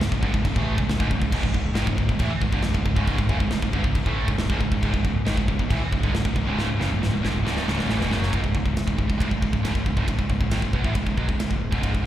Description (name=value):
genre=heavy metal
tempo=137 BPM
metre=4/4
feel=straight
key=C# minor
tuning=A4 = 440 Hz
part: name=high-gain distorted guitar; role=riff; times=0.0-12.1 s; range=C#2 to A3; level=-27 LUFS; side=right 7 dB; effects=distortion, slapback echo
part: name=high-gain distorted guitar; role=riff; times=0.0-8.3 s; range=C#2 to A3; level=-34 LUFS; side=equal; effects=none
part: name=scooped high-gain guitar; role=riff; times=0.0-12.1 s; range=C#2 to A3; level=-30 LUFS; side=left 8 dB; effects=distortion, slapback echo
part: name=growling picked electric bass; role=bass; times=0.0-12.0 s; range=C#1 to B1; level=-26 LUFS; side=left 1 dB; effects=overdrive
part: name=tight metal drum kit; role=drums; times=0.0-12.0 s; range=china cymbal, crash cymbal, kick drum, ride cymbal, snare drum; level=-25 LUFS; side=equal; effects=none
room=little or no reverb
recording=live gig heard through the venue's PA, recital hall reverb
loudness=-21 LUFS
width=side -12 dB against mid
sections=0.0-8.3 A section; 8.3-12.1 B section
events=drum fill 6.6-8.3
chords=0.0 C#m; 8.3 C#5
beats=0.00 0.44 0.88 | 1.32 1.76 2.20 2.63 | 3.07 3.51 3.95 4.39 | 4.82 5.26 5.70 6.13 | 6.57 7.01 7.45 7.88 | 8.32 8.76 9.20 9.64 | 10.08 10.51 10.95 11.39 | 11.83